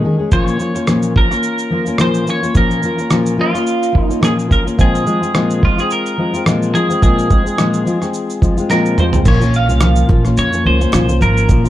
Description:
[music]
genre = acoustic pop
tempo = 107 BPM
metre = 4/4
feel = swing 55% on 16ths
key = Bb minor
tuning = A4 = 440 Hz
[part]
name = fingerpicked steel-string acoustic guitar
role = accompaniment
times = 0.0-11.7 s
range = Bb2 to Ab4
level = -16 LUFS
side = left 2 dB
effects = none
[part]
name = twelve-string electric guitar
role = melody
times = 0.3-11.7 s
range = F4 to F5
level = -20 LUFS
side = right 2 dB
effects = spring reverb, ping-pong delay
[part]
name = dusty soul sampler-style drum kit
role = drums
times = 0.3-11.7 s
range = crash cymbal, kick drum, rim click, shaker, snare drum, toms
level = -16 LUFS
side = right 1 dB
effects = none
[part]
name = upright bass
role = bass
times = 9.3-11.7 s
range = Ab1 to F2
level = -14 LUFS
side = right 1 dB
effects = none
[part]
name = group handclap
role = percussion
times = 9.8-11.1 s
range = none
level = -32 LUFS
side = right 6 dB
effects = none
[sound]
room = light reverb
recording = dark, warm production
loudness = -12 LUFS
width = side -13 dB against mid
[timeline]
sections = 0.0-9.3 A section; 9.3-11.7 B section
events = drum fill 8.7-9.3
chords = 0.3 Bbm; 4.8 Fm/Bb; 9.3 Bbm

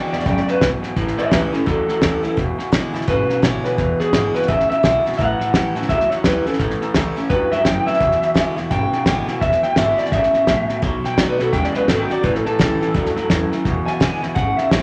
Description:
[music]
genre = rockabilly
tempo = 170 BPM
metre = 4/4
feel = swing 61% on 8ths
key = unclear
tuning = A4 = 441 Hz
[part]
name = electric guitar through a small old amp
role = melody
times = 0.0-14.8 s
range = C#4 to G#5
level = -22 LUFS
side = equal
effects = none
[part]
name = picked steel-string acoustic guitar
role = accompaniment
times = 0.0-14.8 s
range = E2 to F#4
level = -28 LUFS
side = equal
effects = none
[part]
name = electric guitar through a small old amp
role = riff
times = 0.0-14.8 s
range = E2 to G#3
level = -27 LUFS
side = equal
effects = none
[part]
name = upright bass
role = bass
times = 0.0-14.8 s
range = E1 to E2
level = -30 LUFS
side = equal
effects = none
[part]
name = cloth-damped thuddy drum kit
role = drums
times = 0.1-14.8 s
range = hi-hat, kick drum, snare drum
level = -23 LUFS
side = equal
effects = none
[sound]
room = moderate large studio reverb, RT60 1.3 s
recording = nothing above 10.6 kHz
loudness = -18 LUFS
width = mono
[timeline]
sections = 0.0-14.8 A section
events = clean electric guitar solo 0.0-14.8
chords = 0.0 E7; 1.0 A7; 2.4 E7; 5.2 A7; 8.0 E7; 10.8 B7; 12.2 A7; 13.7 E7

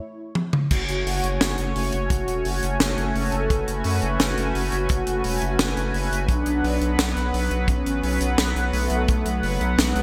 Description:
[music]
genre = synthwave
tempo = 86 BPM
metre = 4/4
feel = straight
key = F# minor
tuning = A4 = 440 Hz
[part]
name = mellow synth brass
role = melody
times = 0.0-10.0 s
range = G#3 to A4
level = -32 LUFS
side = equal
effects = chorus, digital delay
[part]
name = tight funk drum kit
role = drums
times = 0.4-10.0 s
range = crash cymbal, hi-hat, snare drum, toms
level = -28 LUFS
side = equal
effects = gated reverb
[part]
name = chorused pulse-width pad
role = sustained chords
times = 0.7-10.0 s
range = F#3 to G#5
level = -29 LUFS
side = equal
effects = sidechain pumping
[part]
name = round analog bass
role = bass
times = 0.7-10.0 s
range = E1 to F#2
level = -28 LUFS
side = equal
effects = sidechain pumping
[part]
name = kick drum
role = drums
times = 0.7-9.2 s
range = none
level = -25 LUFS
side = equal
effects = none
[sound]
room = light reverb, small room ambience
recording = bright 1980s-style digital production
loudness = -23 LUFS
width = mono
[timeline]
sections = 0.7-10.0 A section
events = break 0.0-0.7; drum fill 0.4-0.7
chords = 0.0 N.C.; 0.7 F#madd9; 6.3 Bm

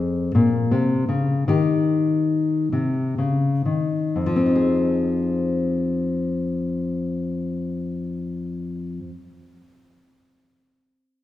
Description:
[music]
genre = folk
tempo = 39-55 BPM (dotted quarters)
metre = 6/8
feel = straight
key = F minor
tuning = A4 = 440 Hz
[part]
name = nylon-string guitar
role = accompaniment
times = 0.0-9.4 s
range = F2 to Ab4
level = -20 LUFS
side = left 2 dB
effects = none
[sound]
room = wet recital hall reverb, RT60 1.6 s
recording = dark, warm production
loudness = -20 LUFS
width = side -13 dB against mid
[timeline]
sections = 0.0-4.2 A section; 4.2-10.4 B section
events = slowing down 0.0-4.2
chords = 0.0 Fm; 1.5 Eb7; 4.2 Fm7

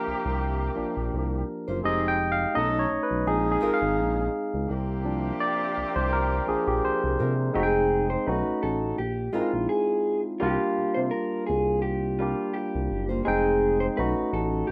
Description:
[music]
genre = R&B, neo-soul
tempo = 84 BPM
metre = 4/4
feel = swing 53% on 16ths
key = unclear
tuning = A4 = 439 Hz
[part]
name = barky tine electric piano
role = accompaniment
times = 0.0-14.7 s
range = F3 to G5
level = -28 LUFS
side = equal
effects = none
[part]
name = clear horn section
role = stabs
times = 0.0-7.1 s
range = C3 to A4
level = -36 LUFS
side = equal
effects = none
[part]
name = smooth gliding synth bass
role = bass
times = 0.1-14.6 s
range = F1 to C3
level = -32 LUFS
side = equal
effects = none
[part]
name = nylon-string guitar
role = second line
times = 1.7-14.7 s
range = G3 to C5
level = -34 LUFS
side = equal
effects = none
[part]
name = electric guitar through a small old amp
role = melody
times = 7.6-14.7 s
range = F4 to C5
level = -30 LUFS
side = equal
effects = slapback echo
[sound]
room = light reverb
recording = rough home demo mix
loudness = -26 LUFS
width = mono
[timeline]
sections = 0.0-7.5 A section; 7.5-14.7 B section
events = tine electric piano solo 0.0-7.5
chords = 0.0 C7sus4; 1.8 Fm9; 2.5 B9; 3.3 Bb7sus4; 4.7 C7sus4; 7.5 Fm9; 8.3 B9; 9.0 Bb7sus4; 10.4 C7sus4; 13.3 Fm9; 14.0 B9

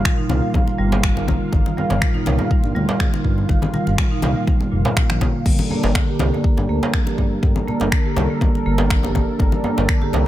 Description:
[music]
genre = afro house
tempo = 122 BPM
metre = 4/4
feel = straight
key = G minor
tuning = A4 = 441 Hz
[part]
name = warm analog pad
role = sustained chords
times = 0.0-10.3 s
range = G3 to F5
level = -26 LUFS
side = equal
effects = chorus, sidechain pumping
[part]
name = marimba with medium mallets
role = arpeggios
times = 0.0-10.1 s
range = Bb2 to G4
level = -23 LUFS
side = right 1 dB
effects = sidechain pumping, digital delay
[part]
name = smooth synth bass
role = bass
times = 0.0-10.2 s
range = F1 to G2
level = -21 LUFS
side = equal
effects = sidechain pumping
[part]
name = deep house drum kit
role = drums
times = 0.1-10.0 s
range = crash cymbal, finger snaps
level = -26 LUFS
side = equal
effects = overdrive
[part]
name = electronic kick drum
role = drums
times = 0.1-10.0 s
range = none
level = -19 LUFS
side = equal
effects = none
[part]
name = congas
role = percussion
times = 0.3-10.2 s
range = none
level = -28 LUFS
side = left 5 dB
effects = none
[part]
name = djembe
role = percussion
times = 0.3-10.2 s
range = none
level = -27 LUFS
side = right 2 dB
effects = none
[sound]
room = small room reverb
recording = none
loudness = -16 LUFS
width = side -14 dB against mid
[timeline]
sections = 0.0-10.3 A section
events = none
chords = 0.0 Ebsus2/G; 5.5 Gm

